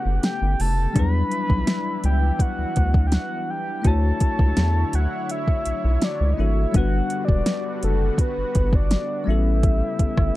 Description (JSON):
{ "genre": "contemporary R&B", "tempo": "83 BPM", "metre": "4/4", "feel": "straight", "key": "E dorian", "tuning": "A4 = 440 Hz", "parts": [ { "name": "soft octave-layered synth lead", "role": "melody", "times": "0.0-10.4 s", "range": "A4 to B5", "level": "-28 LUFS", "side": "equal", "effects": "chorus, tape echo" }, { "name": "bell-like tine electric piano", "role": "accompaniment", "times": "0.0-10.4 s", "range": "F#3 to C#5", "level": "-29 LUFS", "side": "left 5 dB", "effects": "lush chorus" }, { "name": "lush unison pad", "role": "sustained chords", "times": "0.0-10.4 s", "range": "C#3 to C#5", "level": "-33 LUFS", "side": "equal", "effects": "chorus" }, { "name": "round analog bass", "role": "bass", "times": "0.1-10.3 s", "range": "E1 to E2", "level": "-21 LUFS", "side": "equal", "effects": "none" }, { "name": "smooth R&B drum kit", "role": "drums", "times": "0.2-10.3 s", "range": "hi-hat, kick drum, rim click, snare drum", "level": "-20 LUFS", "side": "equal", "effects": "overdrive" } ], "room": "little or no reverb", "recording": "dark, warm production", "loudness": "-19 LUFS", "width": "side -16 dB against mid", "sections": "0.0-10.4 A section", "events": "none", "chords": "0.0 A9; 1.0 Em9; 3.8 Dmaj9; 6.7 Gmaj7; 9.3 A9" }